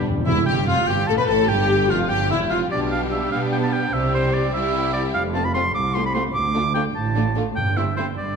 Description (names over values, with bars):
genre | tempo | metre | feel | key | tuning
quick classical-period movement for symphony orchestra | 98 BPM (dotted quarters) | 6/8 | straight | C major | A4 = 442 Hz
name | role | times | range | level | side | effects
rich chamber violin section | melody | 0.0-8.0 s | E4 to B4 | -30 LUFS | left 5 dB | none
clear chamber violin section | second line | 0.0-8.0 s | C4 to B4 | -28 LUFS | left 4 dB | none
clear oboe | second line | 0.0-8.4 s | C5 to D6 | -24 LUFS | right 1 dB | none
clear studio viola section | accompaniment | 0.0-8.0 s | G3 to B4 | -26 LUFS | left 1 dB | none
rich chamber cello section | bass | 0.0-8.4 s | C2 to B3 | -27 LUFS | right 2 dB | none
rich chamber double bass section | bass | 0.0-8.4 s | E1 to B2 | -26 LUFS | right 4 dB | none
timpani | percussion | 0.0-0.8, 7.6-8.1 s | G2 to C3 | -26 LUFS | equal | none
room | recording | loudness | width
wet concert hall reverb, RT60 2.2 s | none | -18 LUFS | side -5 dB against mid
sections
0.3-8.4 A section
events
timpani fill 0.0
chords
0.3 G7sus2/E; 1.5 Fsus2; 2.7 G/B; 3.9 C; 5.1 F; 6.4 Dm; 7.6 C/G